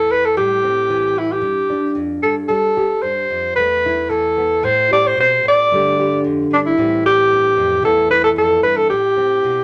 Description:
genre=highlife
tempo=112 BPM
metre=4/4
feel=straight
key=A minor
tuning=A4 = 440 Hz
part: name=breathy alto saxophone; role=melody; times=0.0-9.6 s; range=D4 to D5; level=-16 LUFS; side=equal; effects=none
part: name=nylon-string guitar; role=accompaniment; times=0.0-9.6 s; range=E2 to G4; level=-25 LUFS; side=equal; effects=none
room=wet studio reverb, RT60 0.6 s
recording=none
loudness=-16 LUFS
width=mono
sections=0.0-9.6 A section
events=none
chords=0.4 Am7; 1.4 G5; 2.5 Am7; 3.6 Esus4; 4.6 A5; 5.7 Gsus2; 6.8 Am7; 7.8 Esus4; 8.9 Am7

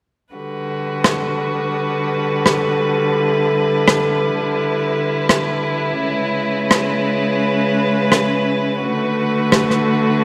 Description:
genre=folktronica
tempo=85 BPM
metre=4/4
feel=straight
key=G lydian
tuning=A4 = 442 Hz
part: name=muted string quartet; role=sustained chords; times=0.3-10.2 s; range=C#3 to B4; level=-19 LUFS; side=equal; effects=none
part: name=rim click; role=drums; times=1.0-9.8 s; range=none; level=-19 LUFS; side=equal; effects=none
room=wet concert hall reverb, RT60 2.0 s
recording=none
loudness=-18 LUFS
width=mono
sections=0.3-10.2 A section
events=none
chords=0.3 Gmaj7; 3.2 Em7; 6.0 C#m7; 8.8 Bm7

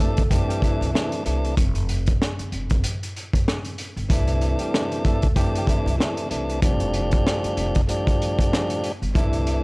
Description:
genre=hip hop, boom-bap hip-hop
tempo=95 BPM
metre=4/4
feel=swing 57% on 16ths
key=unclear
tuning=A4 = 440 Hz
part: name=flamenco guitar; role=melody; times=0.0-9.6 s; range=E3 to A4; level=-32 LUFS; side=equal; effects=high-pass filter, low-pass filter, tape echo
part: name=tonewheel organ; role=accompaniment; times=0.0-9.6 s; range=A2 to D4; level=-26 LUFS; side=equal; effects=overdrive, cassette tape, high-pass filter, low-pass filter
part: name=crunchy breakbeat drum kit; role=drums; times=0.0-9.6 s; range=hi-hat, kick drum, rim click, snare drum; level=-22 LUFS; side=equal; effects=none
part: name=upright bass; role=bass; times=0.2-9.6 s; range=F1 to D2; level=-26 LUFS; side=equal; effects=none
room=small room reverb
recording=dry, gritty hardware recording, transformer saturation, cassette tape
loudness=-20 LUFS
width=side -28 dB against mid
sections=0.0-9.6 A section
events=break 1.6-4.1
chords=0.0 C69; 1.6 N.C.; 4.1 C69; 6.6 F69

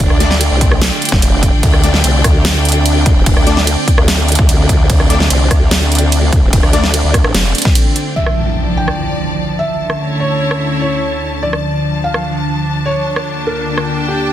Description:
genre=heavy wobble dubstep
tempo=147 BPM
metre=4/4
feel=half-time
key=D minor, D harmonic minor from 8.2 s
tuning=A4 = 440 Hz
part: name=lush unison pad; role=sustained chords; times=0.0-14.3 s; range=D2 to F4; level=-20 LUFS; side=equal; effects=chorus, sidechain pumping
part: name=formant-sweep wobble bass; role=bass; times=0.0-7.5 s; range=E1 to D2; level=-14 LUFS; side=equal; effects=chorus, overdrive
part: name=dubstep drum kit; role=drums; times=0.0-13.9 s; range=hi-hat, ride cymbal, rim click, snare drum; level=-17 LUFS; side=right 1 dB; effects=low-pass filter on hats, low-pass filter on cymbals, soft clipping on snare, low-pass filter on snare
part: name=electronic kick drum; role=drums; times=0.0-7.7 s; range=none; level=-12 LUFS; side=equal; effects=none
part: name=clear studio string section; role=texture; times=0.0-14.3 s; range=D3 to A5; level=-21 LUFS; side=left 1 dB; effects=sidechain pumping
part: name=supersaw stab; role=stabs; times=0.2-6.9 s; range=A3 to D5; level=-21 LUFS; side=left 4 dB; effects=cassette tape, ping-pong delay
part: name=felt-muted upright piano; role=melody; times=8.2-14.3 s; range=G4 to G5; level=-20 LUFS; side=equal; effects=ping-pong delay
part: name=impact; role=sound effects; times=8.2-9.8 s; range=none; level=-20 LUFS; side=equal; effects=none
room=light reverb, digital ambience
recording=dense, heavily limited modern master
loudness=-11 LUFS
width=side -12 dB against mid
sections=0.0-8.2 A section; 8.2-14.3 B section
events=drop 0.0-8.2; impact 8.2-9.8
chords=0.0 D5; 8.2 Dmadd9; 9.8 A/D; 11.4 Dm; 13.1 Bb/D

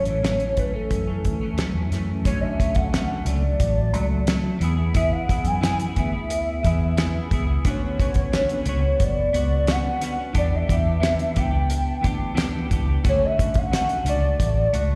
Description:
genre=indie pop, bedroom pop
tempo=89 BPM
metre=4/4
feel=straight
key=unclear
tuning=A4 = 440 Hz
part: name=warbly nostalgic lead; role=melody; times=0.0-15.0 s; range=A4 to G#5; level=-28 LUFS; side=equal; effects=tremolo, lush chorus, slapback echo, analog delay
part: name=clean electric guitar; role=accompaniment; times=0.0-15.0 s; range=F#2 to G#4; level=-30 LUFS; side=equal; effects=analog chorus, warbly pitch drift, slapback echo
part: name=vintage muted fingered electric bass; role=bass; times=0.0-15.0 s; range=F#1 to F#2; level=-26 LUFS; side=equal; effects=none
part: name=cloth-damped thuddy drum kit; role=drums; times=0.1-14.9 s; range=hi-hat, kick drum, snare drum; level=-26 LUFS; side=equal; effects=none
room=studio reverb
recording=live gig heard through the venue's PA, recital hall reverb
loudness=-22 LUFS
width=mono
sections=0.0-2.3 A section; 2.3-15.0 B section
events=none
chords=0.0 F#m7; 2.3 Dmaj7; 4.6 E; 7.7 Bmadd9; 10.3 Em7; 13.0 Dmaj7

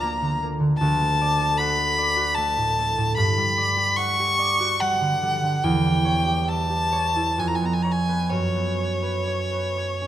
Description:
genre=classical, romantic duo for violin and harp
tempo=60-80 BPM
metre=3/4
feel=rubato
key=unclear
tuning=A4 = 442 Hz
part: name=rich violin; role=melody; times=0.0-10.1 s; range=C#5 to C#6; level=-22 LUFS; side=left 1 dB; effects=none
part: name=concert harp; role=accompaniment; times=0.0-10.1 s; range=D2 to F#5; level=-24 LUFS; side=right 2 dB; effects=none
room=wet recital hall reverb, RT60 1.5 s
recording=none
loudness=-20 LUFS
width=side -12 dB against mid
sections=0.0-10.1 A section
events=none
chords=0.0 Bb/D; 0.8 D; 3.2 Gmaj7; 5.6 C#dim/E; 7.4 C#7/E#; 8.3 F#sus4

